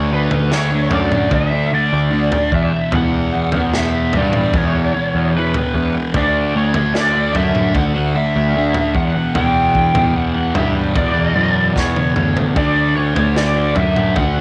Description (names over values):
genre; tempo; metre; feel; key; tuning
psychedelic rock; 75 BPM; 4/4; straight; E dorian; A4 = 440 Hz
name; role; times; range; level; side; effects
lead guitar through a small cranked amp; melody; 0.0-14.4 s; B4 to G5; -22 LUFS; equal; wah, overdrive, slapback echo
fuzz guitar; riff; 0.0-14.4 s; E2 to D4; -22 LUFS; equal; distortion, phaser
fuzz picked electric bass; bass; 0.0-14.4 s; D2 to G2; -21 LUFS; equal; overdrive
crunchy breakbeat drum kit; drums; 0.3-14.4 s; kick drum, snare drum, toms; -24 LUFS; equal; none
room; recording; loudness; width
light reverb; none; -16 LUFS; mono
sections
0.0-14.4 A section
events
drum fill 11.8-12.6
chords
0.0 D; 2.5 E5; 6.1 D; 9.0 Em; 12.6 D